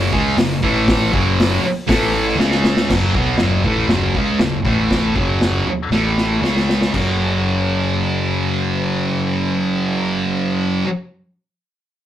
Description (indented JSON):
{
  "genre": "garage rock duo or trio",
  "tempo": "118 BPM",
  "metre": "4/4",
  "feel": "straight",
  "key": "unclear",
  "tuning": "A4 = 441 Hz",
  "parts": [
    { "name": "thick fuzz guitar", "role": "riff", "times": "0.0-10.9 s", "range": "F#2 to C#4", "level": "-17 LUFS", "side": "equal", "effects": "distortion" },
    { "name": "picked electric bass", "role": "bass", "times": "0.0-10.8 s", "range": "F#1 to C#2", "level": "-24 LUFS", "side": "equal", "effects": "none" },
    { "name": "vintage drum kit", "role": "drums", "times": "0.1-7.1 s", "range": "crash cymbal, hi-hat, kick drum, snare drum, toms", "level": "-20 LUFS", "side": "equal", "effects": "none" }
  ],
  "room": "moderate studio reverb, RT60 0.5 s",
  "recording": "rough rehearsal-room recording, tube saturation",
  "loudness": "-15 LUFS",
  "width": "side -11 dB against mid",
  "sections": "0.0-2.9 A section; 2.9-6.9 B section; 6.9-11.0 C section",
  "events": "drum fill 2.4-2.9, 5.9-6.9",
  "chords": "0.0 F#5; 0.6 A5; 1.1 F#5; 1.9 A5; 2.4 C#5; 2.9 F#5; 4.6 A5; 5.2 F#5; 5.9 A5; 6.4 C#5; 6.9 F#5",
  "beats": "0.37 | 0.87 1.37 1.88 2.38 | 2.88 3.38 3.89 4.39 | 4.90 5.41 5.91 6.42 | 6.93 7.43 7.94 8.45 | 8.96 9.46 9.97 10.48"
}